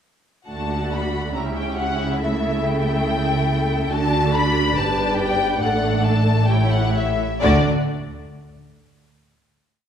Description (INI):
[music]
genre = quick classical-period movement for string orchestra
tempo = 126-142 BPM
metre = 4/4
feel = rubato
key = D major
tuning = A4 = 440 Hz
[part]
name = warm studio violin section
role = melody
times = 0.5-7.7 s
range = D5 to B5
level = -24 LUFS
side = left 4 dB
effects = none
[part]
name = rich studio violin section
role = second line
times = 0.5-7.7 s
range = F#4 to F#5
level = -27 LUFS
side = left 2 dB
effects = none
[part]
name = rich studio viola section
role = accompaniment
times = 0.5-7.7 s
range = A3 to G4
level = -25 LUFS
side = right 2 dB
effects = none
[part]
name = rich studio cello section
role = bass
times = 0.5-7.7 s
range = G2 to D3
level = -26 LUFS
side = right 2 dB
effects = none
[part]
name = rich studio double bass section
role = bass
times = 0.5-7.7 s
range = G1 to D2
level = -24 LUFS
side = right 1 dB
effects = none
[sound]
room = wet recital hall reverb, RT60 1.6 s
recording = recorded in a church or concert hall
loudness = -18 LUFS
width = side -8 dB against mid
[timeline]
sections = 0.5-7.4 A section; 7.4-9.2 final chord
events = none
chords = 0.5 D; 1.3 C#dim; 2.2 A7/C#; 3.9 D; 4.8 G; 5.6 D/A; 6.5 A7; 7.4 D5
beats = | 0.48 0.92 1.35 1.78 | 2.21 2.63 3.06 3.48 | 3.91 4.33 4.76 5.19 | 5.62 6.06 6.50 6.96 | 7.43